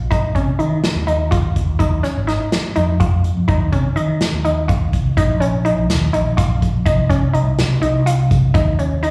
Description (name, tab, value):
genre	progressive instrumental, band music in an uneven meter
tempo	249 BPM (eighths)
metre	7/8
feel	straight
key	unclear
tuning	A4 = 440 Hz
part	analog pluck	arpeggios	0.0-9.1 s	Db4 to F4	-23 LUFS	equal	chorus, slapback echo
part	mellow fretless electric bass	bass	0.0-9.1 s	Ab1 to Eb3	-20 LUFS	equal	none
part	unplugged drum kit	drums	0.1-9.1 s	hi-hat, kick drum, snare drum	-22 LUFS	equal	none
room	light reverb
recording	live gig heard through the venue's PA, recital hall reverb, small room ambience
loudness	-17 LUFS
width	mono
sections	0.0-5.2 A section; 5.2-9.1 B section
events	none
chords	0.0 Eb5; 1.8 Dbadd9/Ab; 3.5 Cmadd11; 5.2 Bbm; 6.9 Cmadd11; 8.5 Eb7(no3)